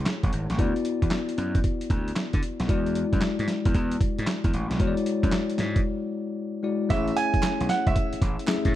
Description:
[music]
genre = R&B, new jack swing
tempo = 114 BPM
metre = 4/4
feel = swing 66% on 16ths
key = A major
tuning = A4 = 439 Hz
[part]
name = bell-like tine electric piano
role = accompaniment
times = 0.0-8.8 s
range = G#3 to E5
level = -28 LUFS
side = left 4 dB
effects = none
[part]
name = gritty slap bass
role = bass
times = 0.0-8.7 s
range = G#1 to D3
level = -28 LUFS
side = equal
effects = overdrive
[part]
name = dusty soul sampler-style drum kit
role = drums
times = 0.1-8.7 s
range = handclaps, hi-hat, kick drum, snare drum, tambourine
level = -26 LUFS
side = equal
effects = overdrive
[part]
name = clear baby grand piano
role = melody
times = 6.9-8.7 s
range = E5 to G#5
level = -28 LUFS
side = right 5 dB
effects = none
[part]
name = group handclap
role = percussion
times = 7.4-8.6 s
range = none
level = -42 LUFS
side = right 7 dB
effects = none
[sound]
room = moderate echo chamber reverb, RT60 2.0 s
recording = dark, warm production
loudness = -23 LUFS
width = side -13 dB against mid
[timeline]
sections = 0.0-6.9 A section; 6.9-8.8 B section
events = break 5.8-6.9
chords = 0.0 Amaj7; 0.6 D69; 2.7 E9; 6.9 Amaj7

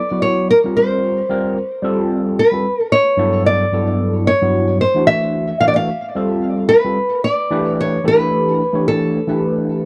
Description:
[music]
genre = jazz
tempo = 111 BPM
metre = 4/4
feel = swing 55% on 16ths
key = unclear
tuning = A4 = 441 Hz
[part]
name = nylon-string guitar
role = melody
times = 0.0-9.9 s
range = A4 to F5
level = -18 LUFS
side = equal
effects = tape echo
[part]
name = overdriven tine electric piano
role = accompaniment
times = 0.1-9.9 s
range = G2 to C#5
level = -20 LUFS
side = equal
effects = phaser
[sound]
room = light reverb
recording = dry, close 1970s-style studio recording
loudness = -16 LUFS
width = mono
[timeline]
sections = 0.0-9.9 A section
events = tine electric piano fill 9.7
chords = 0.5 C5; 1.6 Fadd9; 2.6 Gmaj9; 4.8 D9/E; 5.9 Fadd9; 7.0 Em7

